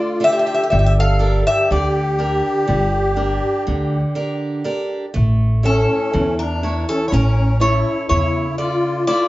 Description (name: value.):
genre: greek folk, Greek bouzouki band.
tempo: 122 BPM (eighths).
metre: 9/8.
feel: straight.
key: unclear.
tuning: A4 = 440 Hz.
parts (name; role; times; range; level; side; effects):
Greek bouzouki; melody; 0.0-9.3 s; A4 to F5; -19 LUFS; left 1 dB; none.
musette accordion; second line; 0.0-9.3 s; C#4 to A4; -22 LUFS; left 1 dB; tape echo.
picked steel-string acoustic guitar; accompaniment; 0.0-9.3 s; C#3 to E5; -24 LUFS; right 2 dB; none.
upright bass; bass; 0.7-8.4 s; G1 to E2; -18 LUFS; equal; none.
room: wet studio ambience, RT60 0.5 s.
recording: heard from further back in the room, nothing above 7.7 kHz.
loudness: -15 LUFS.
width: side -17 dB against mid.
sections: 0.0-9.3 A section.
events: none.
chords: 0.0 Dm; 0.7 Gm; 5.2 A.